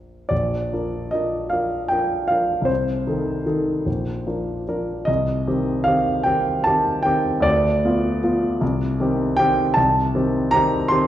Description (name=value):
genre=classical, romantic character piece for solo piano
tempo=51 BPM (dotted quarters)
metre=6/8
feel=rubato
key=Bb major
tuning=A4 = 440 Hz
part: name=warm concert grand piano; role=solo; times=0.0-11.1 s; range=Bb1 to C6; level=-18 LUFS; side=equal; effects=none
room=wet recital hall reverb, RT60 1.8 s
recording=recorded in a church or concert hall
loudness=-18 LUFS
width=side -12 dB against mid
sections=0.3-11.1 A section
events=none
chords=0.3 Bb; 2.7 Adim/C; 3.9 Bb; 5.1 Cm; 7.4 Bdim/D; 8.6 Cm